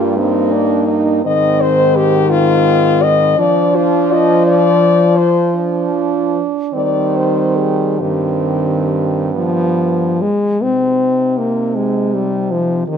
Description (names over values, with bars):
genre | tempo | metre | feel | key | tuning
classical, lyrical piece for horn quartet | 45-59 BPM (dotted quarters) | 6/8 | rubato | C minor | A4 = 435 Hz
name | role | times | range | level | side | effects
mellow French horn | melody | 0.0-13.0 s | Eb4 to Eb5 | -16 LUFS | left 7 dB | none
warm French horn | second line | 0.0-13.0 s | Bb3 to Eb4 | -19 LUFS | right 12 dB | none
warm French horn | accompaniment | 0.0-13.0 s | Eb3 to C4 | -17 LUFS | left 2 dB | none
warm French horn | bass | 0.0-13.0 s | G2 to F3 | -19 LUFS | right 3 dB | none
room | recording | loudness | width
light reverb | close, detailed microphones | -12 LUFS | side -7 dB against mid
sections
0.0-10.6 A section; 10.6-13.0 B section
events
none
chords
0.0 Eb/G; 1.3 Ab; 3.4 Dm/F; 6.7 Cm/Eb; 8.0 Cm/G; 9.3 G; 10.6 Cm